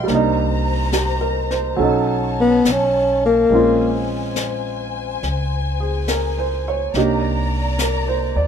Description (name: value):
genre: jazz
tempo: 70 BPM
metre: 4/4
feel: swing 66% on 8ths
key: Bb dorian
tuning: A4 = 435 Hz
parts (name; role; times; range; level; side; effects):
- clear baby grand piano; accompaniment; 0.0-8.5 s; F#3 to F5; -21 LUFS; right 3 dB; none
- warm symphonic string section; sustained chords; 0.0-8.5 s; D#4 to Bb5; -27 LUFS; left 5 dB; none
- upright bass; bass; 0.0-8.5 s; Bb1 to Eb2; -23 LUFS; equal; none
- jazz brush drum kit; drums; 0.1-8.5 s; brushed snare drum, hi-hat, snare drum; -28 LUFS; left 2 dB; none
- breathy tenor saxophone; melody; 2.4-4.1 s; Bb3 to C#4; -14 LUFS; left 2 dB; none
room: light reverb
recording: minimal, uncompressed stereo recording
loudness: -16 LUFS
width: side -8 dB against mid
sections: 0.0-8.5 A section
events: tenor saxophone solo 0.0-8.5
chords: 0.1 Cm7; 1.8 B9; 3.5 Bbm9; 6.9 Cm9